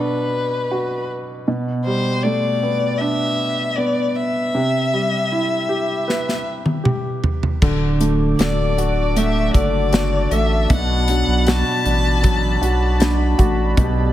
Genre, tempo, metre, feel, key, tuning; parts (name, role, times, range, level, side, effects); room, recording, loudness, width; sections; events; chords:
pop ballad; 78 BPM; 4/4; straight; A4 = 440 Hz
rich violin; melody; 0.0-13.0 s; B4 to A5; -22 LUFS; left 3 dB
clear baby grand piano; accompaniment; 0.0-14.1 s; B2 to B4; -21 LUFS; right 1 dB
modern studio drum kit; drums; 6.1-14.0 s; crash cymbal, hi-hat, kick drum, snare drum, toms; -19 LUFS; equal
sweeping resonant pad; sustained chords; 7.6-14.1 s; F#4 to D6; -27 LUFS; left 2 dB; chorus
flamenco guitar; arpeggios; 7.6-14.1 s; B2 to G4; -26 LUFS; equal
saturated sub bass; bass; 7.6-14.1 s; D1 to B1; -20 LUFS; equal
light reverb; -16 LUFS; side -13 dB against mid
0.0-7.6 A section; 7.6-14.1 B section
drum fill 6.1-7.6
0.0 Bm; 1.5 Gadd9/B; 4.5 Cmaj7; 7.6 D; 10.7 Bm7